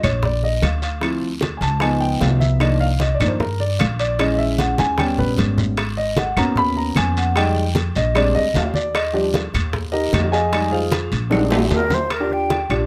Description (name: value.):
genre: Afro-Cuban jazz.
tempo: 152 BPM.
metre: 4/4.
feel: straight.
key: Eb major.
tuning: A4 = 440 Hz.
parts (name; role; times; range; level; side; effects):
warm grand piano; accompaniment; 0.0-12.9 s; Eb3 to Cb6; -23 LUFS; equal; none.
upright bass; bass; 0.0-12.9 s; Ab1 to G2; -24 LUFS; equal; none.
bongos; percussion; 0.0-12.9 s; none; -30 LUFS; equal; none.
claves; percussion; 0.0-12.9 s; none; -31 LUFS; equal; none.
congas; percussion; 0.0-12.9 s; none; -28 LUFS; equal; none.
guiro; percussion; 0.0-12.1 s; none; -36 LUFS; equal; none.
timbales; percussion; 0.0-12.9 s; none; -29 LUFS; equal; none.
breathy concert flute; melody; 11.7-12.7 s; Bb4 to G5; -24 LUFS; equal; none.
room: light reverb.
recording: none.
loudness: -19 LUFS.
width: mono.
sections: 0.0-12.1 A section.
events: grand piano solo 0.0-12.1; drum fill 4.8-5.8, 10.9-12.1.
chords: 0.0 Ebmaj7sus2; 1.0 Dm7; 1.8 Db9; 2.6 Cm11; 4.2 Bbm7b5; 5.0 Eb7b13; 5.8 Abm11; 7.4 Fm7; 8.2 Bb13; 8.9 Ebmaj9; 10.5 Fm7; 11.3 Bb13; 12.1 Ebmaj9.